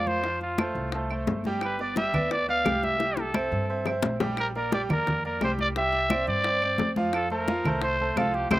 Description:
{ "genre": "latin, salsa", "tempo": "174 BPM", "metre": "4/4", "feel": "straight", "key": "F major", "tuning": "A4 = 440 Hz", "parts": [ { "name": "growling trumpet", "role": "melody", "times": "0.0-8.6 s", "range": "F4 to F5", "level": "-27 LUFS", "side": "equal", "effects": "slapback echo" }, { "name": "bright concert grand piano", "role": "accompaniment", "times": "0.0-8.6 s", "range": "F3 to G5", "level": "-30 LUFS", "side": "right 2 dB", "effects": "slapback echo" }, { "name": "upright bass", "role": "bass", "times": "0.0-8.6 s", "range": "G1 to G2", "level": "-34 LUFS", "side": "equal", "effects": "none" }, { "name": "bongos", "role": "percussion", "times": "0.1-8.6 s", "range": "none", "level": "-33 LUFS", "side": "left 6 dB", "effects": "slapback echo" }, { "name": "congas", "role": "percussion", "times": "0.1-8.6 s", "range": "none", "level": "-30 LUFS", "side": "left 1 dB", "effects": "none" }, { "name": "claves", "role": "percussion", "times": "0.6-8.6 s", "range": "none", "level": "-36 LUFS", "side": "right 5 dB", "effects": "none" } ], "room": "little or no reverb", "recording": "recorded outdoors, with no room sound", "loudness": "-24 LUFS", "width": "side -16 dB against mid", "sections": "0.0-8.6 A section", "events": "drum fill 3.0-4.4", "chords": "0.2 F; 1.6 G; 3.0 C; 4.4 Bb6; 5.8 Csus2; 7.1 F" }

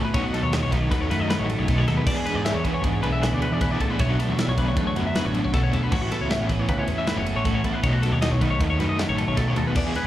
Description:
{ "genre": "math rock and midwest emo", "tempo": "156 BPM", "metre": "5/4", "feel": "straight", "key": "unclear", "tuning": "A4 = 440 Hz", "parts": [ { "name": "twelve-string electric guitar", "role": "accompaniment", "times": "0.0-10.1 s", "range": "E2 to F#4", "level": "-27 LUFS", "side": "right 3 dB", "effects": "phaser" }, { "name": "twelve-string electric guitar", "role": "arpeggios", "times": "0.0-10.1 s", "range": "F#4 to E5", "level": "-29 LUFS", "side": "left 3 dB", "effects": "wide subtle chorus, plate reverb, slapback echo" }, { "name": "crunchy overdriven guitar", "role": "riff", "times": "0.0-10.1 s", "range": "A2 to G#4", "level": "-27 LUFS", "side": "left 1 dB", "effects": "tremolo, slapback echo" }, { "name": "growling picked electric bass", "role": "bass", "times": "0.0-10.1 s", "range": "F#1 to G#2", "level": "-26 LUFS", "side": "left 1 dB", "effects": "overdrive" }, { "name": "modern studio drum kit", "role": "drums", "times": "0.1-10.0 s", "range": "crash cymbal, kick drum, ride cymbal, snare drum", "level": "-28 LUFS", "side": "equal", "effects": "none" } ], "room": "light reverb", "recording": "live gig heard through the venue's PA, club reverb", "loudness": "-20 LUFS", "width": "side -13 dB against mid", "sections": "0.0-10.1 A section", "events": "none", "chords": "0.1 B13; 2.1 E7; 4.0 Bm11; 5.9 A69; 7.8 B13" }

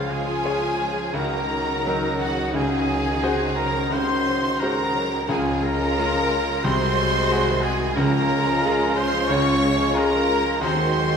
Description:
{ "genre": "classical, romantic movement for piano and orchestra", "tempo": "89 BPM", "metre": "4/4", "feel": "rubato", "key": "Db major", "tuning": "A4 = 440 Hz", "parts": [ { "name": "clear concert grand piano", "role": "melody", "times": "0.0-11.2 s", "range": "C2 to Db5", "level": "-24 LUFS", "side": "left 1 dB", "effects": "none" }, { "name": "clear symphonic violin section", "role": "melody", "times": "0.0-11.2 s", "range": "F5 to Db6", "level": "-30 LUFS", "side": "left 2 dB", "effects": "none" }, { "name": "bright small flute group", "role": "second line", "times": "0.0-11.2 s", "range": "Gb5 to Db6", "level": "-29 LUFS", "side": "right 1 dB", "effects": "none" }, { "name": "rich symphonic violin section", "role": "second line", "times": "0.0-11.2 s", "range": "Gb4 to Db5", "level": "-29 LUFS", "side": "left 2 dB", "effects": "none" }, { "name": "warm oboe", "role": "second line", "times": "0.0-11.2 s", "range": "F4 to Db5", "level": "-29 LUFS", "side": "right 2 dB", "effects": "none" }, { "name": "bright studio viola section", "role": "accompaniment", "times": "0.0-11.2 s", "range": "C3 to Gb4", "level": "-30 LUFS", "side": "right 2 dB", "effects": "none" }, { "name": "mellow French horn section", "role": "sustained chords", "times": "0.0-11.2 s", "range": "Eb3 to Ab4", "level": "-29 LUFS", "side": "left 3 dB", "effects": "none" }, { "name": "dark symphonic double bass section", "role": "bass", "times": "0.0-11.2 s", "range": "C2 to D#2", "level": "-33 LUFS", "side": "right 3 dB", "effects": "none" }, { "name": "rich symphonic cello section", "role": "bass", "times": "0.0-11.2 s", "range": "C3 to D#3", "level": "-31 LUFS", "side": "right 3 dB", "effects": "none" }, { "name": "timpani", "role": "percussion", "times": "0.0-0.8, 5.3-8.9 s", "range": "Db3", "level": "-32 LUFS", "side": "right 2 dB", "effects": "none" } ], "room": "wet scoring stage reverb, RT60 1.8 s", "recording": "minimal, uncompressed stereo recording", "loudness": "-19 LUFS", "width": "side -6 dB against mid", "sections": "0.0-11.2 A section", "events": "none", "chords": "0.0 Db; 1.2 Ebm/Db; 2.5 Ab7/Db; 5.3 Db; 6.6 Ab7/C; 8.0 Db; 10.6 G#7/D#" }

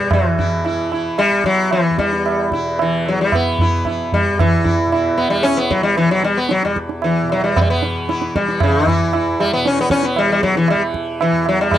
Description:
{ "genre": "indian classical, Hindustani", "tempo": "114 BPM", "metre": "4/4", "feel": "straight", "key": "unclear", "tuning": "A4 = 444 Hz", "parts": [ { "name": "sitar", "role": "melody", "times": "0.0-11.8 s", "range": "E3 to E4", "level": "-16 LUFS", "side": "left 2 dB", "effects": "none" }, { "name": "tanpura", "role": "drone", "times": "0.0-11.8 s", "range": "E2 to E3", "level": "-26 LUFS", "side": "equal", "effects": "none" }, { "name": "tabla", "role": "percussion", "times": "0.1-11.8 s", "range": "none", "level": "-19 LUFS", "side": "right 4 dB", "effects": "none" } ], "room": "light reverb", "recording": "dry, close 1970s-style studio recording", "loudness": "-14 LUFS", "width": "side -11 dB against mid", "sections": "0.1-11.8 A section", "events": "speeding up 0.0-11.8", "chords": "none" }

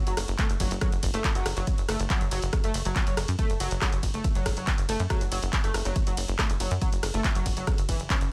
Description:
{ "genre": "driving peak-time techno", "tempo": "140 BPM", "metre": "4/4", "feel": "straight", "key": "F# minor", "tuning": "A4 = 439 Hz", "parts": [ { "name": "overdriven synth lead", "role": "riff", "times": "0.1-8.1 s", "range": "E3 to C#4", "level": "-36 LUFS", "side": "equal", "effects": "distortion, ensemble chorus, vintage 12-bit sampler grit, sidechain pumping, digital delay" }, { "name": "tight sequencer bass", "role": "bass", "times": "0.1-8.3 s", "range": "F#1 to F#2", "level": "-33 LUFS", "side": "equal", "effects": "tube saturation, sidechain pumping" }, { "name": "punchy analog drum machine", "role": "drums", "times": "0.1-8.3 s", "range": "handclaps, hi-hat, ride cymbal, rim click", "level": "-34 LUFS", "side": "equal", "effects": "none" }, { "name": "electronic kick drum", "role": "drums", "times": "0.4-8.2 s", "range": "none", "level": "-29 LUFS", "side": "equal", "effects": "none" } ], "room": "digital ambience", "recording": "none", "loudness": "-27 LUFS", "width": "mono", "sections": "0.0-8.3 A section", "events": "none", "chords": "none" }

